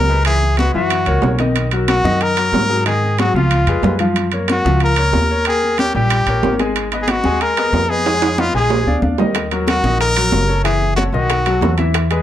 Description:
latin, salsa; 185 BPM; 4/4; straight; Eb minor; A4 = 440 Hz
brilliant trumpet; melody; 0.0-11.7 s; F4 to Bb4; -18 LUFS; left 1 dB
clear concert grand piano; accompaniment; 0.0-12.2 s; Eb3 to Ab5; -21 LUFS; left 3 dB
upright bass; bass; 0.0-12.2 s; Gb1 to Ab2; -18 LUFS; equal
congas; percussion; 0.1-12.2 s; -23 LUFS; left 1 dB
timbales; percussion; 0.2-12.2 s; -22 LUFS; right 7 dB
bongos; percussion; 9.4-12.2 s; -27 LUFS; left 7 dB
moderate small room reverb, RT60 0.5 s; dark, warm production; -13 LUFS; side -11 dB against mid
0.0-12.2 A section
drum fill 3.3-4.2, 8.1-9.4
0.3 Dbm7; 0.9 Gb7; 1.6 Bmaj7; 2.9 Ab5; 3.5 Db7; 4.2 Gbmaj7; 5.5 Eb7; 6.8 Abm7; 8.1 Fm7b5; 8.7 Bb7; 9.4 Ebm; 10.7 Gbm9; 11.3 B7
| 0.25 0.58 0.91 1.23 | 1.55 1.88 2.21 2.53 | 2.86 3.18 3.51 3.83 | 4.16 4.48 4.81 5.13 | 5.46 5.78 6.11 6.43 | 6.76 7.08 7.41 7.73 | 8.06 8.38 8.71 9.03 | 9.35 9.68 10.00 10.33 | 10.65 10.98 11.30 11.62 | 11.95

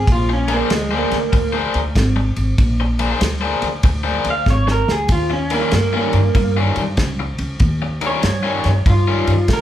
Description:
electric blues shuffle; 96 BPM; 4/4; swing 65% on 8ths; Bb mixolydian; A4 = 438 Hz
electric guitar through a small old amp; melody; 0.0-9.6 s; Ab3 to F5; -20 LUFS; right 2 dB
upright bass; bass; 0.0-9.6 s; Ab1 to G2; -19 LUFS; equal
warm soul drum kit; drums; 0.1-9.6 s; kick drum, ride cymbal, snare drum; -20 LUFS; equal
raw garage guitar; riff; 0.3-9.3 s; Eb3 to C5; -22 LUFS; left 4 dB; overdrive
light reverb; band playing live in one room; -15 LUFS; side -12 dB against mid
0.0-9.6 A section
clean electric guitar solo 0.0-9.6; drum fill 4.5-5.1
0.0 Bb9; 5.1 Eb9
| 0.08 0.71 1.34 1.96 | 2.59 3.22 3.85 4.47 | 5.10 5.73 6.36 6.98 | 7.61 8.24 8.87 9.49

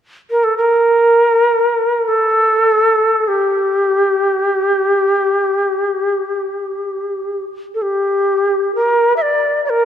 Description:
japanese traditional; free time; G minor; A4 = 440 Hz
reedy shakuhachi; melody; 0.3-9.8 s; G4 to E5; -13 LUFS; equal
moderate church reverb, RT60 3.0 s; -13 LUFS; side -9 dB against mid
0.0-7.8 A section; 7.8-9.8 B section
free time

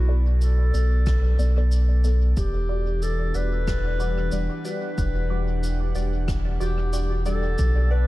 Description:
ambient dub; 92 BPM; 4/4; swing 57% on 16ths; E minor; A4 = 440 Hz
dark clarinet; melody; 0.0-8.1 s; F#4 to B4; -31 LUFS; left 2 dB; dub echo
airy breathy pad; sustained chords; 0.0-8.1 s; B2 to F#5; -34 LUFS; left 1 dB; chorus
warm sub bass; bass; 0.0-8.1 s; E1 to B1; -21 LUFS; equal
filtered dub chord stab; stabs; 0.1-8.1 s; G3 to D5; -35 LUFS; left 1 dB; phaser, wide subtle chorus, dub echo
cabasa and rim click; drums; 0.4-7.7 s; -40 LUFS; left 1 dB; studio reverb, dub echo
electronic kick drum; drums; 1.1-7.7 s; -27 LUFS; equal; overdrive, studio reverb
studio ambience; dark, warm production; -20 LUFS; side -18 dB against mid
0.0-8.1 A section
fade-in on analog synth pad 0.0-8.1
0.0 Bm7; 2.4 Em9
0.42 1.07 1.72 | 2.37 3.02 3.68 4.33 | 4.98 5.63 6.29 6.94 | 7.59

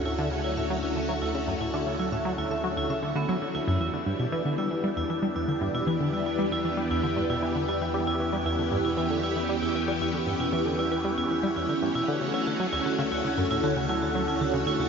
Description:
ambient, sequencer-driven space music; 116 BPM; 4/4; straight; E dorian; A4 = 440 Hz
phased string machine; sustained chords; 0.0-14.9 s; D3 to G4; -29 LUFS; equal; ensemble chorus, phaser, shimmer reverb
round analog bass; bass; 0.0-14.9 s; D2 to E2; -38 LUFS; equal
vibraphone with hard mallets; arpeggios; 0.1-14.9 s; B3 to E5; -30 LUFS; right 2 dB; auto-pan, tape echo, shimmer reverb
tight sequenced synth; riff; 0.1-14.8 s; D2 to G3; -30 LUFS; equal; chorus, phaser, tape echo, shimmer reverb
wet huge ambient reverb, RT60 7.4 s; cassette tape, nothing above 7.5 kHz; -25 LUFS; side -6 dB against mid
0.0-14.9 A section
fade-in on vibraphone 0.0-14.9; fade-in on string machine 0.0-14.9
0.0 Dmaj7; 3.8 Em7; 12.1 Dmaj7
0.19 0.70 1.22 | 1.74 2.26 2.77 3.29 | 3.81 4.33 4.84 5.36 | 5.88 6.39 6.91 7.43 | 7.95 8.46 8.98 9.50 | 10.01 10.53 11.05 11.57 | 12.08 12.60 13.12 13.63 | 14.15 14.67

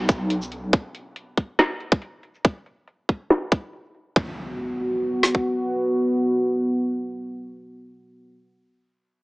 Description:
deep dubstep; 140 BPM; 4/4; swing 54% on 16ths, half-time; A4 = 442 Hz
dark analog pad; sustained chords; 0.0-8.4 s; B3 to F#4; -23 LUFS; equal; chorus, vintage 12-bit sampler grit
deep soft wobble bass; bass; 0.0-0.7 s; B1; -26 LUFS; equal; chorus, tube saturation
downlifter and impact; sound effects; 0.0-0.7, 4.2-8.4 s; -38 LUFS; equal
garage drum kit; drums; 0.1-5.4 s; kick drum, snare drum; -17 LUFS; equal; small room reverb
garage drum kit; drums; 0.1-4.0 s; hi-hat, shaker, snare drum; -20 LUFS; equal; low-pass filter on hats, small room reverb, low-pass filter on cymbals, low-pass filter on perc, low-pass filter on snare
moderate echo chamber reverb, RT60 1.6 s; small speaker sound; -21 LUFS; side -24 dB against mid
0.0-4.2 A section; 4.2-7.6 B section
filter sweep on drum 0.0-4.2
0.0 B5
0.30 | 0.73 1.16 1.59 2.02 | 2.44 2.87 3.30 3.73 | 4.16 4.59 5.02 5.45 | 5.87 6.30 6.73 7.16

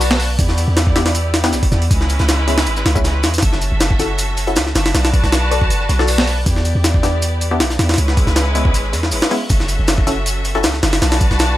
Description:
drum and bass, jungle; 158 BPM; 4/4; straight; F# minor; A4 = 440 Hz
rich studio string section; sustained chords; 0.0-11.6 s; G#3 to A5; -23 LUFS; equal; vintage 12-bit sampler grit
warm 808-style bass; bass; 0.0-11.6 s; F#1 to E2; -17 LUFS; equal
crunchy breakbeat drum kit; drums; 0.0-11.5 s; hi-hat, shaker, snare drum; -27 LUFS; left 2 dB; high-pass filter on hats, small room ambience, high-pass filter on snare, high-pass filter on perc, high-pass filter on room
jungle sampler-style drum kit; drums; 0.0-11.5 s; hi-hat, kick drum, snare drum; -17 LUFS; equal; overdrive, small room ambience
filtered dub chord stab; stabs; 1.0-10.6 s; G#3 to D5; -24 LUFS; left 3 dB; lush chorus, cassette tape, dub echo
light reverb; -13 LUFS; side -14 dB against mid
0.0-11.6 A section
0.4 Em7; 1.9 C#m7; 3.4 F#m7; 4.9 Bm7; 6.5 Em7; 8.0 C#m7; 9.5 F#m7; 11.0 Bm7
0.01 | 0.39 0.77 1.15 1.53 | 1.91 2.29 2.67 3.05 | 3.43 3.81 4.18 4.57 | 4.94 5.32 5.70 6.08 | 6.46 6.84 7.22 7.60 | 7.98 8.36 8.74 9.12 | 9.50 9.88 10.26 10.64 | 11.02 11.40

